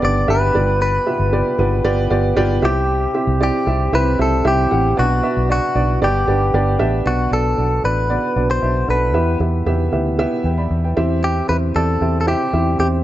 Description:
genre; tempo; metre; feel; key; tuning
piano-driven pop; 115 BPM; 4/4; straight; unclear; A4 = 440 Hz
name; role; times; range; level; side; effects
direct-recorded clean electric guitar; melody; 0.0-12.9 s; F#4 to D5; -20 LUFS; left 1 dB; none
warm upright piano; accompaniment; 0.0-13.0 s; G2 to B5; -19 LUFS; right 2 dB; none
vintage muted fingered electric bass; bass; 0.0-13.0 s; G1 to E2; -19 LUFS; left 1 dB; none
room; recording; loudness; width
light reverb, small room ambience; nothing above 7.7 kHz; -15 LUFS; side -14 dB against mid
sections
0.0-7.1 A section; 7.1-13.0 B section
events
none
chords
0.0 G; 0.5 G7; 2.6 C; 5.0 Bm; 6.0 G; 7.1 Bm; 9.1 Em; 11.0 C/E

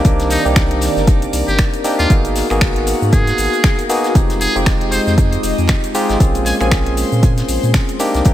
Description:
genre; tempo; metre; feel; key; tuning
deep house; 117 BPM; 4/4; swing 58% on 16ths; unclear; A4 = 440 Hz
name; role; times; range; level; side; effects
airy breathy pad; sustained chords; 0.0-8.3 s; Eb3 to Eb5; -23 LUFS; left 1 dB; chorus, phaser, sidechain pumping
barky tine electric piano; stabs; 0.0-8.3 s; Ab3 to Ab4; -19 LUFS; equal; overdrive, sidechain pumping, analog delay
warm sub bass; bass; 0.0-8.3 s; F1 to Bb2; -19 LUFS; equal; sidechain pumping
damped 70s drum kit; drums; 0.0-8.3 s; hi-hat, snare drum; -32 LUFS; left 2 dB; none
deep house drum kit; drums; 0.0-8.3 s; finger snaps, hi-hat, shaker; -23 LUFS; left 1 dB; overdrive
electronic kick drum; drums; 0.0-8.3 s; none; -14 LUFS; equal; overdrive
trumpet with metal mute; melody; 0.3-6.7 s; Eb4 to Ab5; -23 LUFS; right 1 dB; ping-pong delay
room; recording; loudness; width
light reverb, digital ambience; none; -12 LUFS; side -12 dB against mid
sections
0.0-8.3 A section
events
none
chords
0.0 Cm9; 2.1 Abm9; 4.2 Fm9; 6.2 Bbm9

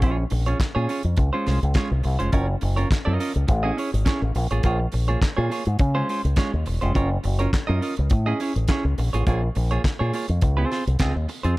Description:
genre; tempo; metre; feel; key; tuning
disco; 104 BPM; 4/4; straight; Db major; A4 = 439 Hz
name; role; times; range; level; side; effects
clean electric guitar; accompaniment; 0.0-11.6 s; Ab3 to Eb5; -27 LUFS; right 2 dB; none
fingered electric bass with an envelope filter; bass; 0.0-11.5 s; Fb1 to Db3; -22 LUFS; equal; none
damped 70s drum kit; drums; 0.0-11.6 s; handclaps, hi-hat, kick drum, snare drum; -24 LUFS; equal; none
room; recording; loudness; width
little or no reverb; dark, warm production; -20 LUFS; side -20 dB against mid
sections
0.0-11.6 A section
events
none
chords
0.0 Bbm7; 1.2 Dbmaj7; 2.3 Gbmaj7; 3.5 Amaj7; 4.4 Bbm7; 5.8 Dbmaj7; 7.0 Gbmaj7; 8.1 Amaj7; 9.0 Bbm7; 10.4 Dbmaj7

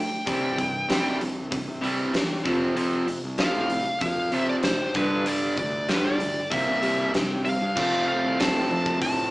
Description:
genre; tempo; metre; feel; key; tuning
classic rock; 96 BPM; 4/4; straight; unclear; A4 = 440 Hz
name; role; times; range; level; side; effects
fuzz lead guitar; melody; 0.0-9.3 s; B4 to A5; -27 LUFS; equal; distortion
crunchy overdriven guitar; riff; 0.0-9.3 s; F2 to F4; -29 LUFS; right 2 dB; none
overdriven electric guitar; riff; 0.0-9.3 s; F2 to F4; -30 LUFS; left 2 dB; none
fuzz fingered electric bass; bass; 0.3-9.3 s; C2 to F3; -32 LUFS; equal; overdrive
big rock drum kit; drums; 0.3-9.2 s; crash cymbal, hi-hat, kick drum, snare drum; -28 LUFS; equal; none
room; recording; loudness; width
moderate large studio reverb, RT60 0.9 s; band playing live in one room, small speaker sound; -22 LUFS; side -20 dB against mid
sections
0.0-7.8 A section; 7.8-9.3 B section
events
none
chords
0.3 C; 2.5 F5; 5.0 G5; 6.5 C7; 7.8 F

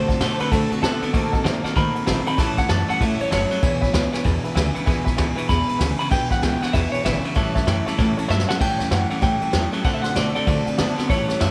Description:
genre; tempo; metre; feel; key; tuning
rockabilly; 193 BPM; 4/4; swing 62% on 8ths; A major; A4 = 440 Hz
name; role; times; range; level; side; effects
electric guitar through a small old amp; melody; 0.0-11.5 s; F#4 to B5; -28 LUFS; equal; spring reverb, tape echo
picked steel-string acoustic guitar; accompaniment; 0.0-11.5 s; A2 to B4; -32 LUFS; equal; none
electric guitar at the edge of break-up; riff; 0.0-11.5 s; E2 to B#3; -28 LUFS; equal; spring reverb
upright bass; bass; 0.0-11.5 s; E1 to D#3; -28 LUFS; equal; none
honky-tonk upright piano; accompaniment; 0.1-11.5 s; B4 to C6; -35 LUFS; equal; none
jazz brush drum kit; drums; 0.1-11.5 s; crash cymbal, kick drum, ride cymbal, snare drum; -26 LUFS; equal; none
room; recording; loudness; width
small room ambience; none; -21 LUFS; mono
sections
0.0-8.6 A section; 8.6-11.5 B section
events
clean electric guitar solo 0.0-8.6; drum fill 8.3-8.6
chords
0.0 D7; 1.1 D#dim7; 2.4 A7; 3.6 E7; 7.4 A7; 9.8 D7

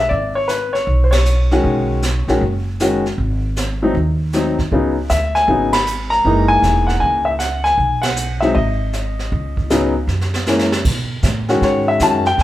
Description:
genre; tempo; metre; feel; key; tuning
jazz piano trio; 156 BPM; 4/4; swing 66% on 8ths; B major; A4 = 438 Hz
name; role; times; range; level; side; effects
clear upright piano; melody; 0.0-12.4 s; C#3 to B5; -16 LUFS; left 1 dB; none
upright bass; bass; 0.0-12.4 s; E1 to B2; -19 LUFS; right 1 dB; none
jazz brush drum kit; drums; 0.1-12.4 s; brushed snare drum, crash cymbal, hi-hat, kick drum, ride cymbal, snare drum; -24 LUFS; right 2 dB; none
room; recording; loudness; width
light reverb; band playing live in one room; -14 LUFS; side -14 dB against mid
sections
0.0-10.8 A section; 10.8-12.4 B section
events
band accent 1.1, 5.7, 8.0; drum fill 10.1-10.8; upright piano solo 10.8-12.4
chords
0.0 E6 (rootless); 1.6 B69; 3.2 G#7b9; 4.7 C#5; 6.2 F#13; 7.8 B5; 8.6 G#5; 9.3 C#9sus4; 10.1 F#7; 10.8 B13

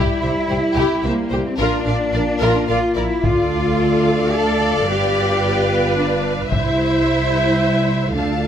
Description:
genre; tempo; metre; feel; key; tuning
cinematic, epic orchestral film score; 110 BPM; 3/4; straight; unclear; A4 = 440 Hz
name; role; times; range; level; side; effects
clear symphonic violin section; melody; 0.0-8.5 s; G4 to A5; -28 LUFS; left 2 dB; none
warm symphonic violin section; second line; 0.0-8.5 s; E4 to F5; -25 LUFS; left 3 dB; none
warm symphonic viola section; accompaniment; 0.0-8.5 s; G4 to C5; -24 LUFS; right 1 dB; none
mellow French horn section; sustained chords; 0.0-8.5 s; G3 to F4; -24 LUFS; left 4 dB; none
dark symphonic cello section; bass; 0.0-8.5 s; Bb3 to A4; -20 LUFS; right 1 dB; none
dark symphonic double bass section; bass; 0.0-8.5 s; G1 to D2; -22 LUFS; right 2 dB; none
taiko ensemble; drums; 3.2-7.6 s; none; -23 LUFS; equal; none
room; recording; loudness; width
light reverb; none; -15 LUFS; side -9 dB against mid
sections
0.0-8.5 A section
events
none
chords
0.0 C; 1.6 Bb; 3.2 Dm; 4.9 G7; 6.5 C

